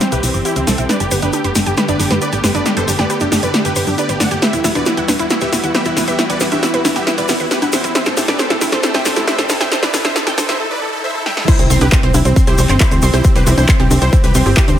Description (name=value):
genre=uplifting trance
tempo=136 BPM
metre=4/4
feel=straight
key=unclear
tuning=A4 = 440 Hz
part: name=supersaw chords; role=melody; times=0.0-14.8 s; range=C4 to G5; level=-21 LUFS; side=equal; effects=sidechain pumping, low-pass filter, digital delay
part: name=lush unison pad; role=sustained chords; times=0.0-14.8 s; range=D3 to G4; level=-23 LUFS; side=left 1 dB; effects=chorus, sidechain pumping
part: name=wide unison pluck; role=arpeggios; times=0.0-14.7 s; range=D4 to C6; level=-22 LUFS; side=right 3 dB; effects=sidechain pumping, digital delay
part: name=punchy analog drum machine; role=drums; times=0.0-14.8 s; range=congas, crash cymbal, handclaps, hi-hat, snare drum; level=-18 LUFS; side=equal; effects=sidechain pumping on perc, sidechain pumping on hats, sidechain pumping on cymbals
part: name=tube shaker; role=percussion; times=0.0-14.8 s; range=none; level=-26 LUFS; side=left 4 dB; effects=none
part: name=riser and impact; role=sound effects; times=5.3-13.2 s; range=none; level=-28 LUFS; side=equal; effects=none
part: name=tight sequencer bass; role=bass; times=0.1-14.8 s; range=E1 to A2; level=-18 LUFS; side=equal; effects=sidechain pumping
part: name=analog pluck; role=second line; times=11.5-14.8 s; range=C4 to C5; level=-22 LUFS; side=right 3 dB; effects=chorus, cassette tape, sidechain pumping, digital delay
part: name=electronic kick drum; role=drums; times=11.5-14.7 s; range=none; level=-12 LUFS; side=equal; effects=overdrive
room=light reverb, digital ambience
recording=high-pass filter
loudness=-12 LUFS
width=side -10 dB against mid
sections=0.0-11.5 A section; 11.5-14.8 B section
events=build-up 0.0-11.5; drum fill 0.0-10.6, 11.3; filter sweep on synth arpeggio sound 0.0-11.5; filter sweep 0.0-11.5; break 10.6-11.5; drop 11.5-14.8; impact 11.5-13.2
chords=0.0 C; 0.9 Gadd9; 4.4 Emadd9; 8.0 Am7; 11.5 C